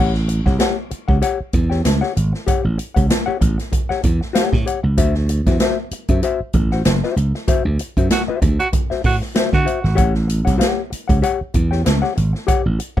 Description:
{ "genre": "funk", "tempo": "96 BPM", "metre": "4/4", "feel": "swing 56% on 16ths", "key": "A mixolydian", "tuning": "A4 = 439 Hz", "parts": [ { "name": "hollow-body jazz guitar", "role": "accompaniment", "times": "0.0-13.0 s", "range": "F#4 to G5", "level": "-22 LUFS", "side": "left 7 dB", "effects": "none" }, { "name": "slap bass", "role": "bass", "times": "0.0-13.0 s", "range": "F#1 to D3", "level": "-18 LUFS", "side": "right 1 dB", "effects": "none" }, { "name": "swinging big-band drum kit", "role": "drums", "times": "0.1-13.0 s", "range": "hi-hat, kick drum, snare drum", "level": "-19 LUFS", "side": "right 1 dB", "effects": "none" }, { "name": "breathy tenor saxophone", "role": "second line", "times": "8.1-10.0 s", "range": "F#4", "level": "-21 LUFS", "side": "right 4 dB", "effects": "none" } ], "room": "little or no reverb", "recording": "rough home demo mix", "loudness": "-16 LUFS", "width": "side -12 dB against mid", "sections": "0.0-13.0 A section", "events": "band accent 7.5-10.0", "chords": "0.0 A6; 5.0 D9; 10.0 A6" }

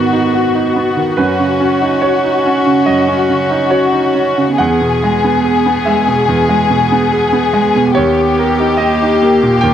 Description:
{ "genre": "neoclassical piano and strings", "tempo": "72 BPM", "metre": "4/4", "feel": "rubato", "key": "unclear", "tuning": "A4 = 442 Hz", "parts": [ { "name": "warm chamber violin section", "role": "melody", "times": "0.0-9.7 s", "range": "F#4 to G#4", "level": "-14 LUFS", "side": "left 5 dB", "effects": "none" }, { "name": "warm cello", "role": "second line", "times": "0.0-9.7 s", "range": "A#3 to C#4", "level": "-18 LUFS", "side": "right 3 dB", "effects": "none" }, { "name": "bright grand piano", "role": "accompaniment", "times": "0.0-9.7 s", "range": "D#2 to G5", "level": "-14 LUFS", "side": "right 4 dB", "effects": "none" } ], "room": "moderate small room reverb, RT60 0.5 s", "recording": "dry, close 1970s-style studio recording", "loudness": "-10 LUFS", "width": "side -10 dB against mid", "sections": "0.0-9.7 A section", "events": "none", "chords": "0.0 G#m7; 1.2 Badd9/F#; 4.6 E; 8.0 D#" }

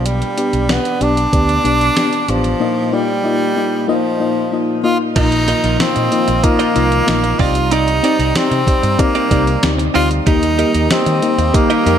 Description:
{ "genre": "1980s-style pop", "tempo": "94 BPM", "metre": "4/4", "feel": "straight", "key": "unclear", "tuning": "A4 = 442 Hz", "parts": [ { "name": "clear tenor saxophone", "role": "melody", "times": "0.0-12.0 s", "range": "F3 to F4", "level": "-17 LUFS", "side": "right 2 dB", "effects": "shimmer reverb" }, { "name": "FM electric piano with tremolo", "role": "accompaniment", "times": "0.0-12.0 s", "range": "Bb2 to Eb5", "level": "-18 LUFS", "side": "left 4 dB", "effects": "shimmer reverb" }, { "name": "fretless electric bass", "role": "bass", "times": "0.0-12.0 s", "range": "A1 to Eb3", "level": "-18 LUFS", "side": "right 1 dB", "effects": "none" }, { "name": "clean 12-bit digital drum machine", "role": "drums", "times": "0.1-12.0 s", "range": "crash cymbal, hi-hat, kick drum, snare drum", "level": "-19 LUFS", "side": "right 1 dB", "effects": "gated reverb" }, { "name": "sweeping resonant pad", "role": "sustained chords", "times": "5.2-12.0 s", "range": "C3 to G4", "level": "-25 LUFS", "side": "right 1 dB", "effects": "chorus, shimmer reverb" }, { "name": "direct-recorded clean electric guitar", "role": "riff", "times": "5.2-12.0 s", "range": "C4 to Eb5", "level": "-23 LUFS", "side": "right 8 dB", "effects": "analog chorus, digital delay, shimmer reverb" } ], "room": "moderate plate reverb, RT60 1.6 s", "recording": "none", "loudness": "-12 LUFS", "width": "side -9 dB against mid", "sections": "0.0-5.2 A section; 5.2-12.0 B section", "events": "none", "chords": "0.0 G/B; 2.6 Bbsus4; 7.4 Cmadd9; 10.3 Eb" }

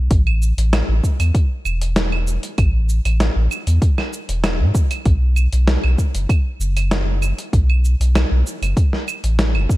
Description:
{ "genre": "sunset chillout", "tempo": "97 BPM", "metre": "4/4", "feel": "straight", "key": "unclear", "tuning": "A4 = 443 Hz", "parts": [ { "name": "warm sub bass", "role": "bass", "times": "0.0-9.7 s", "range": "E1 to A2", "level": "-16 LUFS", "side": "equal", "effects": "none" }, { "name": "dusty soul sampler-style drum kit", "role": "drums", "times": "0.1-9.8 s", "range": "cabasa, claves, hi-hat, snare drum", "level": "-23 LUFS", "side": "right 1 dB", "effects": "low-pass filter on perc, low-pass filter on hats, low-pass filter on snare, low-pass filter on room" }, { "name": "electronic kick drum", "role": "drums", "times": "0.1-9.8 s", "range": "none", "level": "-16 LUFS", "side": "equal", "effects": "none" } ], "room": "little or no reverb", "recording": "dark, warm production", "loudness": "-16 LUFS", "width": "side -17 dB against mid", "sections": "0.1-9.8 A section", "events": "none", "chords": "none" }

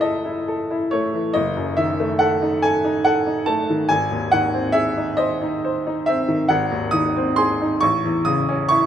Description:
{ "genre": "classical, romantic nocturne for solo piano", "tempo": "46 BPM (dotted quarters)", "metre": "6/8", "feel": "rubato", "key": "unclear", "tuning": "A4 = 441 Hz", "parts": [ { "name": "bright upright piano", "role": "solo", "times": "0.0-8.9 s", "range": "F#1 to D#6", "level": "-18 LUFS", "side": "equal", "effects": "none" } ], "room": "moderate recital hall reverb, RT60 1.4 s", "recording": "close, detailed microphones", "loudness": "-18 LUFS", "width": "side -9 dB against mid", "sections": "0.0-8.9 A section", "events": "none", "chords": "0.0 F#m7; 1.3 D#dim/F#; 3.9 G#; 7.8 A" }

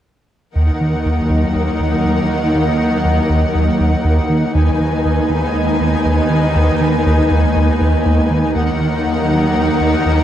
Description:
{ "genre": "cinematic, hybrid orchestral and electronic film score", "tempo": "120 BPM", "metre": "4/4", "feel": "straight", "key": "Eb minor", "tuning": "A4 = 440 Hz", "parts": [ { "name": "warm symphonic violin section", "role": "second line", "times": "0.6-10.2 s", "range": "Bb4 to Ab5", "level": "-22 LUFS", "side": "left 3 dB", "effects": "none" }, { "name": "warm symphonic viola section", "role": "accompaniment", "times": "0.6-10.2 s", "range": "Eb3 to Eb4", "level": "-20 LUFS", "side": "right 1 dB", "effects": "none" }, { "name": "hollow soft pad", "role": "sustained chords", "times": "0.9-10.2 s", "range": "Gb3 to Eb5", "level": "-21 LUFS", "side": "left 2 dB", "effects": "ensemble chorus" }, { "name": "smooth synth bass", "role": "riff", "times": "0.6-10.2 s", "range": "Eb2 to Eb3", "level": "-17 LUFS", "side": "equal", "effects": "none" }, { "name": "clear symphonic double bass section", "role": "bass", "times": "0.6-10.2 s", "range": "Eb2", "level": "-23 LUFS", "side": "right 2 dB", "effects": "none" }, { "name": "rich symphonic cello section", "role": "bass", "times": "0.6-10.2 s", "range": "Eb2", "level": "-22 LUFS", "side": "right 1 dB", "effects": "none" } ], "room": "moderate scoring stage reverb, RT60 1.8 s", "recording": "dark, warm production", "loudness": "-13 LUFS", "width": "side -11 dB against mid", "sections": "0.6-10.2 A section", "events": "build-up 0.6-10.2", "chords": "0.6 Ebm; 4.6 Abm/Eb; 8.6 Ebm" }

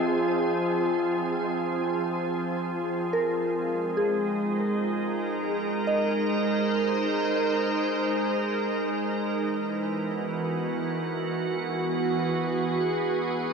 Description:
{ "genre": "ambient", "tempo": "free time", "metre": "none", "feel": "none", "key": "unclear", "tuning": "A4 = 436 Hz", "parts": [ { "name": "soft additive organ-like pad", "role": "sustained chords", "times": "0.0-13.5 s", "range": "E3 to C5", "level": "-25 LUFS", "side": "right 1 dB", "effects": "ensemble chorus, built-in reverb" }, { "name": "soft synth bell", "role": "arpeggios", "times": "0.0-9.4 s", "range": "Ab4 to Eb5", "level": "-32 LUFS", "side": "equal", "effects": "chorus, ping-pong delay" } ], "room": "wet huge ambient reverb, RT60 8.3 s", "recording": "none", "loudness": "-25 LUFS", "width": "side -5 dB against mid", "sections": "0.0-13.5 A section", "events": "none", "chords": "0.0 Fm7; 3.5 Ab6; 9.3 E" }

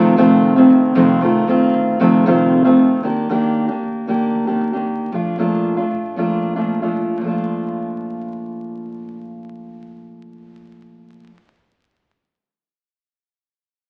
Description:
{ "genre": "acoustic pop", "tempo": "115 BPM", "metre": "4/4", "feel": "straight", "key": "Bb major", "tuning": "A4 = 435 Hz", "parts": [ { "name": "fingerpicked steel-string acoustic guitar", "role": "accompaniment", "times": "0.0-11.4 s", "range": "F2 to G4", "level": "-17 LUFS", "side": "equal", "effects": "none" }, { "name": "upright bass", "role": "bass", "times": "0.0-11.3 s", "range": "F1 to F2", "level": "-36 LUFS", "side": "equal", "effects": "none" } ], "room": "wet studio reverb, RT60 0.8 s", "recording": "very old 78 rpm record, vinyl crackle", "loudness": "-16 LUFS", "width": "mono", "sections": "0.0-3.0 A section; 3.0-7.2 B section; 7.2-11.4 C section", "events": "none", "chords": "0.0 F7; 3.0 Ebmaj7; 5.1 Bbmaj7" }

